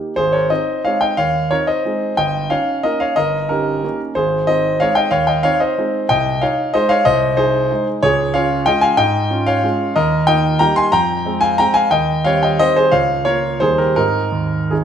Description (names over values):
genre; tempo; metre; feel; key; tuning
classical, piano waltz; 156-197 BPM; 3/4; rubato; Ab major; A4 = 441 Hz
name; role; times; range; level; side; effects
warm concert grand piano; solo; 0.0-14.8 s; G1 to C6; -14 LUFS; equal; none
room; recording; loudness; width
wet large studio reverb, RT60 1.3 s; none; -14 LUFS; side -8 dB against mid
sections
0.2-14.8 A section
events
none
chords
0.2 Ab; 2.2 Eb7/G; 4.2 Ab; 6.1 Ab/C; 8.0 Db; 10.0 Eb; 10.9 Fm; 11.9 Cm/Eb; 12.9 Bbm/Db; 13.6 Eb; 14.0 Ab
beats
| 0.17 0.50 0.85 | 1.18 1.51 1.85 | 2.18 2.51 2.85 | 3.18 3.50 3.83 | 4.17 4.49 4.81 | 5.12 5.45 5.78 | 6.10 6.42 6.74 | 7.06 7.38 7.71 | 8.03 8.34 8.66 | 8.98 9.30 9.64 | 9.96 10.28 10.61 | 10.94 11.26 11.60 | 11.92 12.25 12.59 | 12.93 13.26 13.61 | 13.97 14.33 14.71